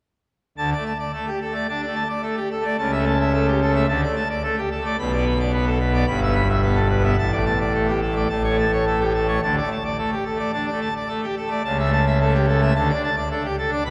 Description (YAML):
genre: classical, organ toccata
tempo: 108 BPM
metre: 4/4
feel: straight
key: unclear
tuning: A4 = 441 Hz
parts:
  - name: pipe organ, full organ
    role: solo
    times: 0.6-13.9 s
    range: G1 to B5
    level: -22 LUFS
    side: equal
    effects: none
room: wet cathedral reverb, RT60 5.2 s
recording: none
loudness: -22 LUFS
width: mono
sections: 0.6-13.9 A section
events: none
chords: 0.6 D5; 2.8 A7/C#; 3.9 D5; 5.0 Bm; 6.1 Em/G; 7.2 Asus4; 8.3 A; 9.4 D5; 11.6 A7/C#; 12.8 D5